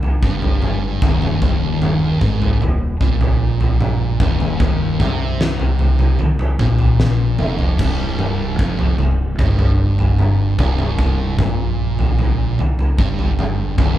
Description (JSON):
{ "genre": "stoner and doom metal", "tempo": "75 BPM", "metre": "4/4", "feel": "straight", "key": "C minor", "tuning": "A4 = 440 Hz", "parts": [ { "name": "big rock drum kit", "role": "drums", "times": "0.0-14.0 s", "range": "crash cymbal, kick drum, snare drum, toms", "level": "-17 LUFS", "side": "equal", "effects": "none" }, { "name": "thick fuzz guitar", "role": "riff", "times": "0.2-14.0 s", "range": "C2 to C3", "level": "-22 LUFS", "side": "left 5 dB", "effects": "distortion" }, { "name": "thick fuzz guitar", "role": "riff", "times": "0.2-14.0 s", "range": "C2 to C3", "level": "-22 LUFS", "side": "right 5 dB", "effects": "distortion" }, { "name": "growling fingered electric bass", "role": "bass", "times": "0.2-14.0 s", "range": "C1 to C2", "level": "-24 LUFS", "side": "equal", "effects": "overdrive" } ], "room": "light reverb", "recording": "band playing live in one room", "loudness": "-15 LUFS", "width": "side -12 dB against mid", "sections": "0.0-14.0 A section", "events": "drum fill 7.0-7.8", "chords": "0.0 Cm (rootless); 1.4 Eb5; 7.8 C5", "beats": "0.62 | 1.42 2.22 3.01 3.81 | 4.61 5.40 6.20 7.00 | 7.80 8.59 9.39 10.19 | 10.99 11.79 12.58 13.38" }